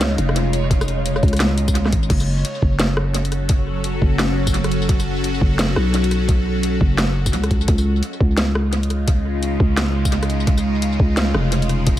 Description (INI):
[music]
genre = half-time drum and bass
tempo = 172 BPM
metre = 4/4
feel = swing 59% on 16ths, half-time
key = unclear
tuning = A4 = 439 Hz
[part]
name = bowed-like drone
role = sustained chords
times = 0.0-12.0 s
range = C#3 to A4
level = -24 LUFS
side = equal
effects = built-in reverb, phaser, sidechain pumping
[part]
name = growling 808-style bass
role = bass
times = 0.0-12.0 s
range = E#1 to C#2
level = -20 LUFS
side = equal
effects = none
[part]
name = drum and bass drum kit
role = drums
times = 0.0-12.0 s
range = crash cymbal, hi-hat, rim click, snare drum, tambourine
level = -23 LUFS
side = equal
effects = overdrive, studio reverb, tape echo
[part]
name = backwards swelling texture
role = texture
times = 0.0-2.1 s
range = C#5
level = -31 LUFS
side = right 3 dB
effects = built-in reverb
[part]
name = electronic kick drum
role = drums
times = 0.7-12.0 s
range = none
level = -18 LUFS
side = equal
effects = studio reverb
[sound]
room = digital ambience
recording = echo-heavy mix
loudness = -16 LUFS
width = side -13 dB against mid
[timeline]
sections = 0.0-2.1 A section; 2.1-12.0 A section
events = drop 0.0-2.1, 2.1-12.0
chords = 0.0 C#add9; 2.1 F#m; 7.7 C#add9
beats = 0.01 0.36 | 0.70 1.05 1.40 1.75 | 2.10 2.45 2.80 3.15 | 3.50 3.85 4.19 4.54 | 4.89 5.24 5.59 5.94 | 6.29 6.63 6.98 7.33 | 7.68 8.03 8.38 8.73 | 9.08 9.43 9.78 10.12 | 10.47 10.82 11.17 11.52 | 11.87